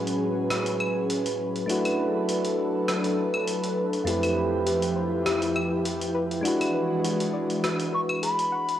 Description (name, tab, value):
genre	sunset chillout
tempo	101 BPM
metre	4/4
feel	swing 53% on 16ths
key	A major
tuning	A4 = 440 Hz
part	soft electric-piano-like synth keys	accompaniment	0.0-8.8 s	F2 to B4	-29 LUFS	equal	chorus, auto-pan, cassette tape, tape echo
part	airy breathy pad	sustained chords	0.0-8.8 s	E3 to B4	-27 LUFS	equal	chorus, cassette tape
part	dusty soul sampler-style drum kit	drums	0.1-8.8 s	claves, hi-hat, rim click	-32 LUFS	equal	cassette tape
part	soft round pluck	arpeggios	4.1-8.8 s	F#4 to F#5	-32 LUFS	left 5 dB	chorus, cassette tape, tape echo
part	bright reedy baroque flute	melody	7.9-8.8 s	B5 to C#6	-26 LUFS	left 1 dB	cassette tape
room	wet lush hall reverb, RT60 1.8 s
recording	home recording on cassette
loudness	-23 LUFS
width	side -11 dB against mid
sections	0.0-8.8 A section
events	none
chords	0.0 Amaj13; 1.7 D6; 4.1 Fmaj9#11; 6.4 E9